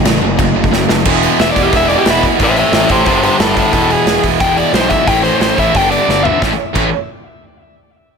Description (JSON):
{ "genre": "punk rock", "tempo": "179 BPM", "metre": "4/4", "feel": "straight", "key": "A major", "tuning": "A4 = 439 Hz", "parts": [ { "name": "sludgy distorted guitar", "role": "riff", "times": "0.0-6.9 s", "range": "E2 to A3", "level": "-17 LUFS", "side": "left 14 dB", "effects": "overdrive" }, { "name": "tight distorted guitar", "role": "riff", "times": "0.0-6.9 s", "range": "G2 to E4", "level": "-16 LUFS", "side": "right 16 dB", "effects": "distortion" }, { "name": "fuzz picked electric bass", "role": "bass", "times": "0.0-6.9 s", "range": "E1 to B1", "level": "-20 LUFS", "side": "equal", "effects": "overdrive" }, { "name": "big rock drum kit", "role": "drums", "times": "0.1-6.8 s", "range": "crash cymbal, hi-hat, kick drum, snare drum, toms", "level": "-17 LUFS", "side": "right 1 dB", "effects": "none" }, { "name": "overdriven electric guitar", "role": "melody", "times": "1.4-6.4 s", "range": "E4 to G5", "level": "-14 LUFS", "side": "left 2 dB", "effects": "tape echo" } ], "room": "light reverb", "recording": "none", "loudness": "-10 LUFS", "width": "side -6 dB against mid", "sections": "0.0-1.1 A section; 1.1-6.4 B section; 6.4-7.7 C section", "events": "drum fill 0.7-1.1, 6.1-6.4; overdriven electric guitar solo 1.1-6.4", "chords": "0.0 F#m; 1.1 E; 2.4 A; 3.1 G; 3.7 E; 5.1 A; 5.7 G; 6.4 A" }